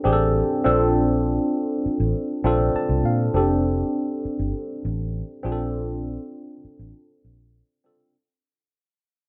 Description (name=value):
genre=lush 1970s-style soul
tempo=100 BPM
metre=4/4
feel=straight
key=unclear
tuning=A4 = 440 Hz
part: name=tine electric piano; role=accompaniment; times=0.0-8.2 s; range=C4 to A5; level=-25 LUFS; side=equal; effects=phaser
part: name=vintage muted fingered electric bass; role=bass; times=0.1-7.6 s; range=F1 to Bb2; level=-26 LUFS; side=equal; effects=none
room=light reverb, digital ambience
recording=none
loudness=-23 LUFS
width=mono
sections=0.0-3.4 A section; 3.4-8.1 B section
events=tine electric piano fill 2.5-3.4; fade-out 3.4-8.1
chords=0.0 F69 (rootless); 0.7 Bbmaj9; 3.4 F69; 5.4 Bbmaj9